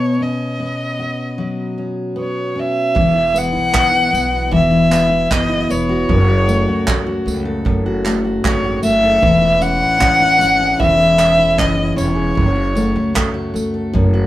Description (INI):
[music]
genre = acoustic pop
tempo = 76 BPM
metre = 4/4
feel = straight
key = E major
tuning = A4 = 443 Hz
[part]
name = dark violin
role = melody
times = 0.0-13.5 s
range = C#5 to F#5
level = -16 LUFS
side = equal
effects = none
[part]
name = picked steel-string acoustic guitar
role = accompaniment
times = 0.0-14.3 s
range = F#2 to A4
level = -17 LUFS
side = left 1 dB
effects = none
[part]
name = upright bass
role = bass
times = 3.0-14.3 s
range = E1 to C#2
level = -23 LUFS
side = right 1 dB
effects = none
[part]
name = soft brush drum kit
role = drums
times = 3.0-14.1 s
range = handclaps, kick drum, tambourine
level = -20 LUFS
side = right 2 dB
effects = none
[sound]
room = moderate studio ambience, RT60 0.5 s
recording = band playing live in one room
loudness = -13 LUFS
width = side -14 dB against mid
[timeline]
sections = 0.0-3.0 A section; 3.0-14.3 B section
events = none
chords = 0.0 Badd9; 3.0 Esus2; 6.1 F#m; 9.2 C#m/E; 12.4 F#m